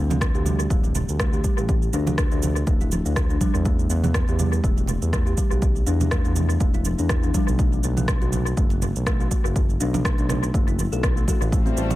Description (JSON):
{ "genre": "afro house", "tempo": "122 BPM", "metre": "4/4", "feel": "swing 56% on 16ths", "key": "unclear", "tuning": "A4 = 441 Hz", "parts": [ { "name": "kalimba", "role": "arpeggios", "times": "0.0-12.0 s", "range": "E3 to A4", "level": "-28 LUFS", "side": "left 2 dB", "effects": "sidechain pumping, low-pass filter, dub echo" }, { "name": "smooth synth bass", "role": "bass", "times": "0.0-12.0 s", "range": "D1 to E2", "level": "-24 LUFS", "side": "equal", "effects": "sidechain pumping" }, { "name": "electronic shaker and rim click", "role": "drums", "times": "0.1-12.0 s", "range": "none", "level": "-31 LUFS", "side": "equal", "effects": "dub echo" }, { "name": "congas", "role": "percussion", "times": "0.1-12.0 s", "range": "none", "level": "-30 LUFS", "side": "right 2 dB", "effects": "dub echo" }, { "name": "electronic kick drum", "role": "drums", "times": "0.2-11.6 s", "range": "none", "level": "-22 LUFS", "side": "equal", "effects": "none" }, { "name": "warm symphonic string section", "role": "sustained chords", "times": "11.5-12.0 s", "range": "G3 to C4", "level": "-29 LUFS", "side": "left 3 dB", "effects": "sidechain pumping" } ], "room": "studio ambience", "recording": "echo-heavy mix", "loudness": "-19 LUFS", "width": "side -16 dB against mid", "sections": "0.0-12.0 A section", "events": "filter sweep on kalimba 0.0-12.0", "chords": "0.0 D5; 3.7 Em; 7.6 B7(no3)", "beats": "0.21 0.70 1.20 | 1.69 2.18 2.67 3.16 | 3.66 4.15 4.64 5.13 | 5.62 6.12 6.61 7.10 | 7.59 8.08 8.57 9.07 | 9.56 10.05 10.54 11.03 | 11.53" }